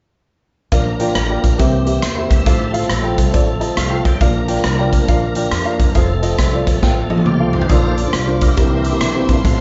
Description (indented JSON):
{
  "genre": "uptempo gospel",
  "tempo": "138 BPM",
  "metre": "4/4",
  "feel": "swing 63% on 8ths",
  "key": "Bb major",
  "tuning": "A4 = 439 Hz",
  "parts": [
    { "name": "dark upright piano", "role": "accompaniment", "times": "0.7-9.6 s", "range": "A2 to A5", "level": "-22 LUFS", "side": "equal", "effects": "none" },
    { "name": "tonewheel organ", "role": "sustained chords", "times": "0.7-9.6 s", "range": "E3 to G5", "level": "-25 LUFS", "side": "equal", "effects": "slow rotary speaker, chorus vibrato" },
    { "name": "upright bass", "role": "bass", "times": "0.7-9.6 s", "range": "F1 to F2", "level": "-23 LUFS", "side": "equal", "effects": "none" },
    { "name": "swinging big-band drum kit", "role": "drums", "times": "0.7-9.6 s", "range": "hi-hat, kick drum, rim click, snare drum, toms", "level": "-19 LUFS", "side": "equal", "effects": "none" },
    { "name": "warm studio string section", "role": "sustained chords", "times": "7.7-9.6 s", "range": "C5 to D6", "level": "-31 LUFS", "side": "equal", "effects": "none" }
  ],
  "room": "light reverb",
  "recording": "band playing live in one room, nothing above 7.7 kHz",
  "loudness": "-16 LUFS",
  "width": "mono",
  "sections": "0.7-7.7 A section; 7.7-9.6 B section",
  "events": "upright piano fill 3.3-4.2; tonewheel organ fill 3.6-4.2; drum fill 6.8-7.7; tonewheel organ solo 7.7-9.6",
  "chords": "0.7 Bb; 1.6 C7; 2.5 F/A; 4.2 Bb; 6.0 F; 7.7 Bb; 8.6 C7"
}